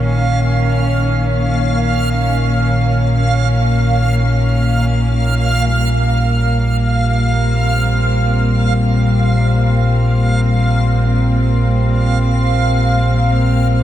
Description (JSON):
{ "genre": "dark ambient drone", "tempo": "free time", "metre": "none", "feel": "none", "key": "unclear", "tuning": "A4 = 441 Hz", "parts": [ { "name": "warm studio cello section", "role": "sustained chords", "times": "0.0-13.8 s", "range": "Eb3 to Db4", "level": "-20 LUFS", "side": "left 2 dB", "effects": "none" }, { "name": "deep rumbling drone", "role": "drone", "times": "0.0-13.8 s", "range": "Bb1 to Bb2", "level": "-14 LUFS", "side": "equal", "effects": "built-in reverb" }, { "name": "backwards swelling texture", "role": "texture", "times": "0.0-13.8 s", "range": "F5", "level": "-20 LUFS", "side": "right 2 dB", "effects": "built-in reverb" } ], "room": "wet huge ambient reverb, RT60 7.7 s", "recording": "none", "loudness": "-12 LUFS", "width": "side -12 dB against mid", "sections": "0.0-13.8 A section", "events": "filter sweep on synth drone 0.0-13.8", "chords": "0.0 Bbm; 5.7 Gm" }